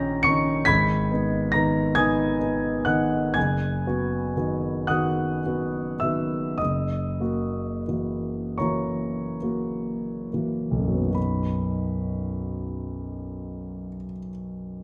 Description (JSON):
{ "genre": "classical, romantic nocturne for solo piano", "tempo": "21-48 BPM (dotted quarters)", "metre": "12/8", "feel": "rubato", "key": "B major", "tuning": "A4 = 440 Hz", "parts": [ { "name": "warm concert grand piano", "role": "solo", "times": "0.0-14.8 s", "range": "F#1 to C#7", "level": "-26 LUFS", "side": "equal", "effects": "none" } ], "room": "moderate recital hall reverb, RT60 1.6 s", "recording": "dark, warm production", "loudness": "-25 LUFS", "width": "mono", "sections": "0.0-11.2 A section; 11.2-14.8 B section", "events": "slowing down 0.0-11.2", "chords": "0.0 D#7/A#; 0.7 G#m; 3.4 B/F#; 6.6 F#7; 11.2 B" }